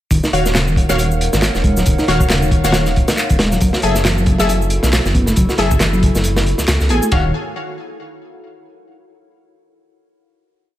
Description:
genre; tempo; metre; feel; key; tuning
breakbeat, breaks; 137 BPM; 4/4; swing 57% on 16ths; unclear; A4 = 439 Hz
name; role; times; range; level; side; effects
warbly tape-like pad; sustained chords; 0.7-7.3 s; Eb4 to Gb5; -25 LUFS; equal; chorus, built-in reverb, vintage 12-bit sampler grit, sidechain pumping
mellow reed electric piano; riff; 0.1-7.3 s; Db3 to Gb4; -21 LUFS; equal; fast tremolo, overdrive, digital delay
dark detuned saw bass; bass; 0.1-7.3 s; Eb1 to Db2; -18 LUFS; equal; none
crunchy breakbeat drum kit; drums; 0.1-7.2 s; hi-hat, kick drum, ride cymbal, snare drum; -16 LUFS; equal; none
electronic shaker and handclaps; drums; 0.1-7.1 s; none; -24 LUFS; equal; overdrive
orchestra-hit-like synth stab; stabs; 0.3-7.3 s; Gb4 to Ab5; -21 LUFS; left 1 dB; built-in reverb, digital delay
room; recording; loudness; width
small room reverb; none; -13 LUFS; side -13 dB against mid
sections
0.1-7.1 drop; 7.1-8.9 final chord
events
drop 0.1-7.1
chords
0.1 Ebm9; 3.6 Gbm9; 7.1 Ebm9

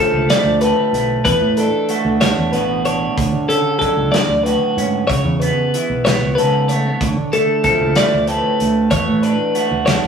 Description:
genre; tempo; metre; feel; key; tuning
math rock and midwest emo; 63 BPM (dotted quarters); 6/8; straight; unclear; A4 = 440 Hz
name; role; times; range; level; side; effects
electric guitar through a small old amp; accompaniment; 0.0-10.1 s; G#2 to A4; -19 LUFS; right 3 dB; none
twelve-string electric guitar; arpeggios; 0.0-10.1 s; A4 to D5; -18 LUFS; left 2 dB; none
fingered electric bass; bass; 0.1-10.1 s; A1 to D3; -20 LUFS; right 1 dB; none
loose indie drum kit; drums; 0.3-10.0 s; hi-hat, kick drum, snare drum; -22 LUFS; equal; none
room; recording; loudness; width
moderate stone room reverb, RT60 1.1 s; rough rehearsal-room recording, studio ambience; -14 LUFS; side -6 dB against mid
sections
0.0-10.1 A section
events
none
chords
0.0 Dmadd9; 1.3 E9sus4; 3.2 Dmaj7; 5.1 C#m7; 7.0 Dmadd9; 8.9 E9sus4

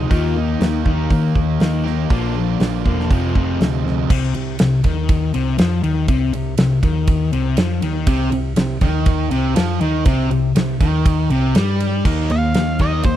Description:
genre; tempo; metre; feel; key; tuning
classic rock; 121 BPM; 4/4; straight; C minor; A4 = 441 Hz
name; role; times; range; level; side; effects
overdriven slide guitar; second line; 0.0-0.9 s; Eb4 to F4; -26 LUFS; left 5 dB; none
distorted electric guitar; riff; 0.0-4.1, 8.1-13.2 s; F2 to G4; -24 LUFS; right 15 dB; overdrive
sludgy distorted guitar; riff; 0.0-13.2 s; F2 to Eb4; -21 LUFS; left 7 dB; overdrive
hollow-body short-scale picked electric bass; bass; 0.0-13.2 s; E1 to Eb3; -20 LUFS; right 1 dB; none
huge arena drum kit; drums; 0.1-13.2 s; crash cymbal, hi-hat, kick drum, ride cymbal, snare drum; -20 LUFS; right 1 dB; none
octave-fuzz lead guitar; melody; 12.3-13.2 s; C5 to F5; -23 LUFS; right 1 dB; distortion, slapback echo
room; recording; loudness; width
little or no reverb; dry, close 1970s-style studio recording; -15 LUFS; side -12 dB against mid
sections
0.0-4.1 A section; 4.1-12.0 B section; 12.0-13.2 C section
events
lead electric guitar solo 12.0-13.2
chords
0.1 Eb; 2.1 Bb; 3.1 Fm; 4.1 Cm; 12.0 Eb5

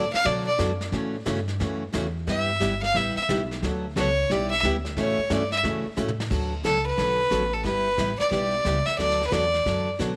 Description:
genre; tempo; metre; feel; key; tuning
country, western swing; 179 BPM; 4/4; swing 65% on 8ths; D major; A4 = 440 Hz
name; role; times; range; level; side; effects
clear fiddle; melody; 0.0-9.9 s; A4 to F5; -27 LUFS; equal; none
picked steel-string acoustic guitar; accompaniment; 0.0-10.1 s; C#3 to A4; -31 LUFS; equal; none
upright bass; bass; 0.0-10.2 s; G1 to B2; -33 LUFS; equal; none
vintage brush drum kit; drums; 0.1-10.2 s; brushed snare drum, crash cymbal, hi-hat, kick drum, snare drum, toms; -37 LUFS; equal; none
room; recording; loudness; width
light reverb, small room reverb; none; -25 LUFS; mono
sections
0.0-6.3 A section; 6.3-10.2 B section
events
fiddle solo 0.0-6.3; drum fill 6.0-6.3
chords
0.0 D6; 0.9 A6; 2.3 G6; 3.6 D6; 4.3 G6; 5.0 A6; 6.3 D6; 7.6 G6; 9.0 D6

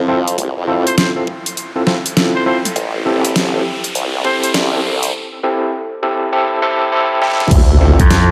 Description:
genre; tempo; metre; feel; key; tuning
glitch hop; 101 BPM; 4/4; swing 63% on 16ths; D minor; A4 = 441 Hz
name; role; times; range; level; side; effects
overdriven tine electric piano; stabs; 0.0-8.2 s; C4 to A4; -19 LUFS; equal; medium tremolo, sidechain pumping, low-pass filter, analog delay
formant-sweep wobble bass; bass; 0.0-8.0 s; A1 to F2; -19 LUFS; equal; chorus, tube saturation, high-pass filter
riser and impact; sound effects; 0.5-8.3 s; none; -24 LUFS; equal; none
dubstep drum kit; drums; 0.3-8.3 s; crash cymbal, hi-hat, snare drum; -20 LUFS; equal; overdrive
electronic kick drum; drums; 0.4-8.1 s; none; -16 LUFS; equal; overdrive, high-pass filter on kick
growling trumpet; melody; 0.9-4.5 s; C5; -26 LUFS; equal; vintage 12-bit sampler grit, low-pass filter, analog delay
gritty slap bass; bass; 8.0-8.3 s; F2; -13 LUFS; equal; overdrive
room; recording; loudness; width
moderate plate reverb, RT60 1.5 s; echo-heavy mix, high-pass filter; -15 LUFS; mono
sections
0.0-7.5 A section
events
build-up 0.0-7.5; filter sweep on tine electric piano 0.0-7.5; riser 0.5-5.1; drum fill 7.2; impact 7.5-8.3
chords
0.0 Dm9 (rootless); 2.8 Am7; 7.5 Dm9

